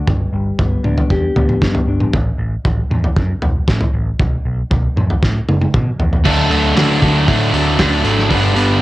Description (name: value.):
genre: quiet-loud alternative rock.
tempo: 117 BPM.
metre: 4/4.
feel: straight.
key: unclear.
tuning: A4 = 439 Hz.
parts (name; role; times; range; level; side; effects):
mellow electric guitar; arpeggios; 0.0-2.1 s; G2 to G4; -20 LUFS; left 3 dB; phaser.
overdriven picked electric bass; bass; 0.1-8.8 s; E1 to B2; -18 LUFS; equal; none.
loose indie drum kit; drums; 0.1-8.7 s; crash cymbal, hi-hat, kick drum, snare drum, toms; -17 LUFS; equal; none.
thick fuzz guitar; riff; 6.2-8.8 s; G2 to D4; -14 LUFS; equal; distortion.
room: light reverb.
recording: home recording on cassette.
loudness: -13 LUFS.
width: side -17 dB against mid.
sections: 0.0-6.2 A section; 6.2-8.8 B section.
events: drum fill 5.2-6.2.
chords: 0.1 G; 2.1 A5; 4.2 B5; 6.2 D; 8.3 G.